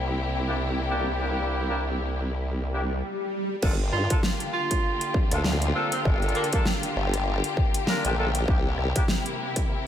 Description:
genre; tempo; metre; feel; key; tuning
glitch hop; 99 BPM; 4/4; swing 58% on 16ths; G dorian; A4 = 440 Hz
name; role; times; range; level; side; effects
rich studio string section; sustained chords; 0.0-9.9 s; C3 to G4; -31 LUFS; left 2 dB; sidechain pumping
formant-sweep wobble bass; bass; 0.0-8.9 s; G1 to G2; -27 LUFS; equal; chorus, tube saturation
mellow horn section; stabs; 0.5-9.0 s; Bb3 to Bb4; -32 LUFS; equal; sidechain pumping, tape echo
swell; sound effects; 2.7-3.6 s; none; -32 LUFS; equal; none
dubstep drum kit; drums; 3.6-9.7 s; crash cymbal, hi-hat, rim click, snare drum; -30 LUFS; equal; studio reverb
electronic kick drum; drums; 3.6-9.7 s; none; -25 LUFS; equal; distortion, studio reverb
clear tenor saxophone; melody; 3.9-6.6 s; Bb3 to F4; -30 LUFS; right 3 dB; tape echo
room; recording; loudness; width
light reverb, small room ambience; none; -23 LUFS; side -10 dB against mid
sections
0.0-3.6 A section; 3.6-9.9 B section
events
swell 2.7-3.6; stop 3.0-3.6; drop 3.6-9.9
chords
0.0 C7; 3.6 Gm7; 8.5 C7

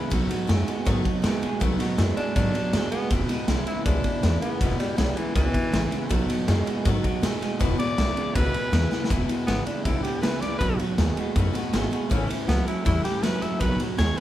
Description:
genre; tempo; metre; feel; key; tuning
rockabilly; 160 BPM; 4/4; straight; E major; A4 = 438 Hz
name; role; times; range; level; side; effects
raspy tenor saxophone; melody; 0.0-14.2 s; E3 to E5; -30 LUFS; left 1 dB; none
picked steel-string acoustic guitar; accompaniment; 0.0-14.2 s; E2 to F#4; -32 LUFS; left 6 dB; none
electric guitar through a small old amp; riff; 0.0-14.2 s; E2 to A3; -28 LUFS; right 4 dB; none
upright bass; bass; 0.1-14.2 s; E1 to B2; -26 LUFS; equal; none
raw garage drum kit; drums; 0.1-14.2 s; kick drum, ride cymbal, snare drum; -27 LUFS; equal; none
room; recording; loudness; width
moderate large studio reverb, RT60 1.3 s; band playing live in one room; -22 LUFS; side -13 dB against mid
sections
0.0-9.1 A section; 9.1-14.2 B section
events
drum fill 8.9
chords
0.1 B7; 3.1 E; 6.1 B7; 7.6 E; 10.6 B7; 12.1 A; 13.6 B7

